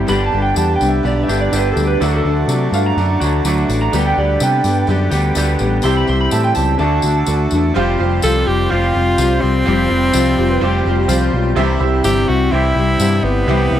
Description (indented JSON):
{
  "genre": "folk rock and heartland rock",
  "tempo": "126 BPM",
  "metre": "4/4",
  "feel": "straight",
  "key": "unclear",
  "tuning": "A4 = 440 Hz",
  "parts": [
    { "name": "bright upright piano", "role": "accompaniment", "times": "0.0-13.8 s", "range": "A3 to G5", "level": "-26 LUFS", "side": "right 10 dB", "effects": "none" },
    { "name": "picked steel-string acoustic guitar", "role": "accompaniment", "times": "0.0-13.8 s", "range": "G2 to G4", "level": "-21 LUFS", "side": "left 6 dB", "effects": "none" },
    { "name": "electric guitar through a small old amp", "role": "riff", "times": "0.0-13.8 s", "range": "G2 to G4", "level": "-20 LUFS", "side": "right 1 dB", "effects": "none" },
    { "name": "picked electric bass", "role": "bass", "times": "0.0-13.8 s", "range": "F1 to C3", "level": "-17 LUFS", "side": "equal", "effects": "none" },
    { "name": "electric slide guitar", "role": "second line", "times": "0.1-11.1 s", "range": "F4 to C6", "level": "-21 LUFS", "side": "right 4 dB", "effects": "none" },
    { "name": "accordion", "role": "sustained chords", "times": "0.1-13.8 s", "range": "A3 to E6", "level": "-28 LUFS", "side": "right 2 dB", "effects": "none" },
    { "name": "tambourine", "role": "percussion", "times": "0.1-13.1 s", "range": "none", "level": "-29 LUFS", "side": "left 7 dB", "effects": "none" },
    { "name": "bright tenor saxophone", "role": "melody", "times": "8.2-13.8 s", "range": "B3 to A4", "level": "-18 LUFS", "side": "equal", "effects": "none" }
  ],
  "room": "studio reverb",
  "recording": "dry, close 1970s-style studio recording",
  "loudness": "-13 LUFS",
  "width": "side -10 dB against mid",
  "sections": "0.0-7.8 A section; 7.8-13.8 B section",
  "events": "electric slide guitar solo 0.0-7.8",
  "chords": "0.1 G; 2.0 D; 3.9 G/D; 5.8 C; 6.8 D; 7.8 Fsus2; 11.6 C",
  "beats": "| 0.09 0.57 1.05 1.53 | 2.01 2.49 2.97 3.45 | 3.93 4.41 4.89 5.37 | 5.85 6.33 6.80 7.28 | 7.76 8.23 8.71 9.19 | 9.66 10.14 10.62 11.09 | 11.57 12.04 12.52 13.00 | 13.48"
}